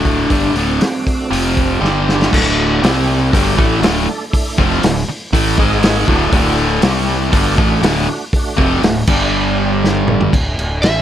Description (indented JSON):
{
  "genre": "blues rock power trio and southern rock",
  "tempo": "120 BPM",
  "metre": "4/4",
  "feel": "straight",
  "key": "D mixolydian",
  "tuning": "A4 = 440 Hz",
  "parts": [
    { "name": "overdriven slide guitar", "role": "melody", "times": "0.0-1.8, 10.8-11.0 s", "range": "D4 to E5", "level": "-20 LUFS", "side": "equal", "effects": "analog delay" },
    { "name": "overdriven tonewheel organ", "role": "sustained chords", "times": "0.0-10.3 s", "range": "F3 to A4", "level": "-25 LUFS", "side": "right 4 dB", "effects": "chorus vibrato, fast rotary speaker" },
    { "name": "overdriven electric guitar", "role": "riff", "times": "0.0-10.3 s", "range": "D2 to C4", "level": "-16 LUFS", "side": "equal", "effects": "none" },
    { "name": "fuzz fingered electric bass", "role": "bass", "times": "0.0-11.0 s", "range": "D1 to C2", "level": "-19 LUFS", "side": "equal", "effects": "overdrive" },
    { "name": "vintage drum kit", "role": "drums", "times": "0.1-11.0 s", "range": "crash cymbal, hi-hat, kick drum, snare drum, toms", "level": "-16 LUFS", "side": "equal", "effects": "none" }
  ],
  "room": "light reverb",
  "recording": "none",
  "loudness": "-12 LUFS",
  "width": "side -11 dB against mid",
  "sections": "0.0-2.3 A section; 2.3-10.3 B section",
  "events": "drum fill 1.8-2.3, 9.8-10.3",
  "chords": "0.0 D; 1.3 F5; 1.8 G5; 2.3 D; 2.8 C5; 3.3 D; 5.6 G#5; 6.1 D; 6.8 C5; 7.3 D; 9.1 G5; 10.3 D5",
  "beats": "| 0.31 0.81 1.32 1.82 | 2.32 2.82 3.33 3.83 | 4.33 4.83 5.33 5.83 | 6.33 6.83 7.33 7.83 | 8.33 8.83 9.33 9.83 | 10.33 10.83"
}